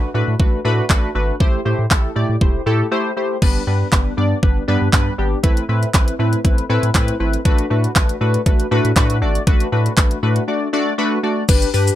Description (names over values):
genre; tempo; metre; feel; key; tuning
dance-pop; 119 BPM; 4/4; straight; unclear; A4 = 440 Hz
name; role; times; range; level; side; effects
funky polysynth comp; accompaniment; 0.0-11.9 s; G3 to D5; -20 LUFS; left 1 dB; chorus, sidechain pumping
saturated sub bass; bass; 0.0-11.9 s; E1 to A2; -19 LUFS; equal; sidechain pumping
pop drum kit; drums; 0.4-12.0 s; crash cymbal, handclaps, hi-hat, kick drum, shaker; -15 LUFS; equal; overdrive
room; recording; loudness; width
little or no reverb; none; -15 LUFS; side -13 dB against mid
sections
0.0-3.4 A section; 3.4-11.5 B section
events
break 2.9-3.4, 10.5-11.5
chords
0.0 D6/A; 1.4 Am7; 3.4 G; 5.4 Amadd9; 7.5 D6